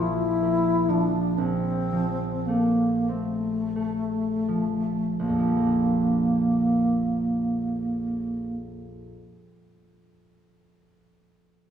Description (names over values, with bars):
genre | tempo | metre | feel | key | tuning
classical, impressionist duo for alto flute and harp | 26-45 BPM (dotted quarters) | 6/8 | rubato | Bb lydian | A4 = 440 Hz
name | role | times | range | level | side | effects
alto flute | melody | 0.0-8.6 s | A3 to E4 | -24 LUFS | left 1 dB | none
concert harp | accompaniment | 0.0-9.2 s | Bb1 to D4 | -28 LUFS | right 3 dB | none
room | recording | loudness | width
wet recital hall reverb, RT60 1.3 s | heard from further back in the room, studio reverb | -22 LUFS | side -9 dB against mid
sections
0.0-5.2 A section; 5.2-9.1 B section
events
slowing down 0.0-5.2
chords
0.0 Bb5; 1.4 Fadd11/Bb; 5.2 Bb6